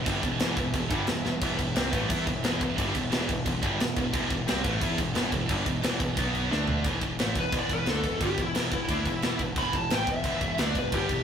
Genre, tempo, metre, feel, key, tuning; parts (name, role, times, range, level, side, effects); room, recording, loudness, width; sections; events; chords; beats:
heavy metal; 177 BPM; 4/4; straight; E minor; A4 = 441 Hz
warm chamber string section; sustained chords; 0.0-6.8 s; D3 to B5; -41 LUFS; equal
heavy high-gain guitar; riff; 0.0-11.2 s; E2 to E4; -33 LUFS; right 6 dB; distortion
raw garage guitar; riff; 0.0-6.8 s; E2 to E4; -35 LUFS; right 1 dB; overdrive
scooped high-gain guitar; riff; 0.0-11.2 s; E2 to E4; -34 LUFS; left 4 dB; distortion
growling picked electric bass; bass; 0.0-11.2 s; E1 to E2; -33 LUFS; equal; overdrive
tight metal drum kit; drums; 0.1-11.2 s; crash cymbal, kick drum, snare drum, toms; -29 LUFS; equal
high-gain lead guitar; melody; 7.4-11.2 s; E4 to B5; -30 LUFS; left 1 dB; distortion
moderate stone room reverb, RT60 1.4 s; rough rehearsal-room recording; -25 LUFS; side -8 dB against mid
0.0-6.9 A section; 6.9-11.2 B section
drum fill 1.3, 6.5-6.9; lead electric guitar solo 6.9-11.2
0.0 Em; 6.2 B5; 6.5 D5; 6.9 Em
| 0.07 0.41 0.74 1.08 | 1.42 1.76 2.10 2.44 | 2.78 3.12 3.46 3.80 | 4.14 4.48 4.82 5.16 | 5.50 5.84 6.17 6.51 | 6.85 7.19 7.53 7.87 | 8.21 8.55 8.89 9.23 | 9.57 9.91 10.25 10.59 | 10.93